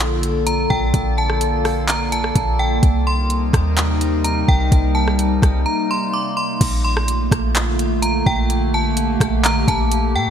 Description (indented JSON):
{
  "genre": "hip hop, atmospheric cloud-rap",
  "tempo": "127 BPM",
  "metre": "4/4",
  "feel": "half-time",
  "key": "Bb major",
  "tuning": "A4 = 438 Hz",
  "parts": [
    { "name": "warbly tape-like pad", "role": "sustained chords", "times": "0.0-10.3 s", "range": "C3 to A4", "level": "-21 LUFS", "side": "equal", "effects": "chorus, built-in reverb, phaser, sidechain pumping" },
    { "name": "clean 808-style bass", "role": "bass", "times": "0.0-10.3 s", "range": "Bb1 to Bb2", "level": "-20 LUFS", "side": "equal", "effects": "none" },
    { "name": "drifting glass-harmonics texture", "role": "texture", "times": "0.0-6.6 s", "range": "Bb3 to Eb5", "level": "-32 LUFS", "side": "equal", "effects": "chorus, built-in reverb" },
    { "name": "smooth R&B drum kit", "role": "drums", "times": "0.2-10.0 s", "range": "crash cymbal, handclaps, hi-hat, kick drum, rim click", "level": "-20 LUFS", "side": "equal", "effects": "none" },
    { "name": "metallic FM bell", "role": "melody", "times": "0.5-10.3 s", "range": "G5 to D6", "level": "-23 LUFS", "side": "right 1 dB", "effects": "chorus, digital delay" }
  ],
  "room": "light reverb, digital ambience",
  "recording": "bright 1980s-style digital production",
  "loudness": "-16 LUFS",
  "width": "side -8 dB against mid",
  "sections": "0.0-6.6 A section; 6.6-10.3 B section",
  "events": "break 5.7-6.6",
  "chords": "0.0 Bbmaj7; 2.8 Cm7; 6.6 Bbmaj7"
}